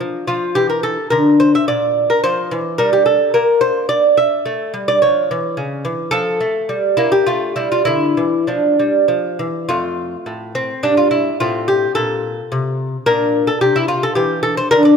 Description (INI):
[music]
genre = classical, baroque-style dance for lute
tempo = 107 BPM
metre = 3/4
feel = rubato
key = D minor, F major from 9.7 s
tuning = A4 = 440 Hz
[part]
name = lute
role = solo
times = 0.0-15.0 s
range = F2 to E5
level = -14 LUFS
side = equal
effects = none
[sound]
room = light reverb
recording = close, detailed microphones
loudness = -14 LUFS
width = side -6 dB against mid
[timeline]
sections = 0.0-9.7 A section; 9.7-15.0 A section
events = none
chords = 0.0 Bb5; 1.1 Bb; 2.8 Gm69; 4.5 A7; 6.1 F; 6.7 Gm69; 7.3 Fmaj9; 7.9 Dm; 9.7 F; 11.4 Am7; 13.1 Bb